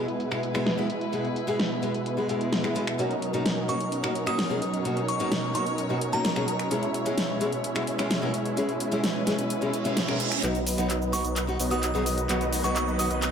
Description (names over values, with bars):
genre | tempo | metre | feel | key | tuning
EDM, festival progressive house | 129 BPM | 4/4 | straight | B major | A4 = 443 Hz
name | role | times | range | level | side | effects
picked steel-string acoustic guitar | accompaniment | 0.0-13.1 s | B2 to B4 | -31 LUFS | left 1 dB | ping-pong delay
rich chamber string section | sustained chords | 0.0-13.3 s | B2 to C#5 | -36 LUFS | equal | low-pass filter
supersaw chords | riff | 0.0-13.3 s | B2 to E5 | -29 LUFS | right 1 dB | low-pass filter, ping-pong delay
big-room dance drum kit | drums | 0.1-13.3 s | finger snaps, handclaps, hi-hat, shaker, snare drum | -30 LUFS | equal | low-pass filter on hats, low-pass filter on cymbals, low-pass filter on snare, low-pass filter on perc, low-pass filter on room
glassy synth bell | melody | 3.7-6.5, 11.1-13.2 s | A#5 to D#6 | -32 LUFS | right 1 dB | chorus, ping-pong delay
reverse cymbal and riser | sound effects | 9.7-13.3 s | none | -35 LUFS | right 4 dB | none
wide detuned saw bass | bass | 10.4-13.3 s | B1 | -32 LUFS | equal | chorus
room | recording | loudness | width
moderate lush hall reverb, RT60 2.2 s | none | -24 LUFS | side -7 dB against mid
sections
0.0-10.4 A section; 10.4-13.3 B section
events
reverse cymbal 9.7-10.4; build-up 10.4-13.3; drum fill 10.4-13.3; filter sweep on supersaw synth 10.4-13.3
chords
0.0 E/B; 3.0 D#m7/B; 6.7 C#m/B; 10.4 B